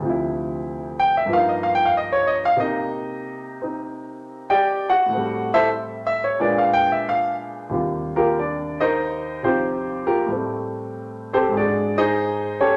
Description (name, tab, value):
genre	solo jazz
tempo	94 BPM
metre	4/4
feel	swing 66% on 8ths, rubato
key	Eb major from 7.7 s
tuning	A4 = 440 Hz
part	warm grand piano	solo	0.0-12.8 s	D2 to G5	-22 LUFS	equal	none
room	moderate large studio reverb, RT60 1.1 s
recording	lossy compression artefacts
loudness	-22 LUFS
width	mono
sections	0.0-7.7 A section; 7.7-12.8 A section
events	grand piano solo 0.0-7.7, 7.7-12.8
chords	0.0 Dm9; 1.3 G7alt; 2.6 Cm9; 5.1 Am7; 6.4 Bb7b9; 7.7 Eb69; 10.3 Am7; 11.6 Ab7#11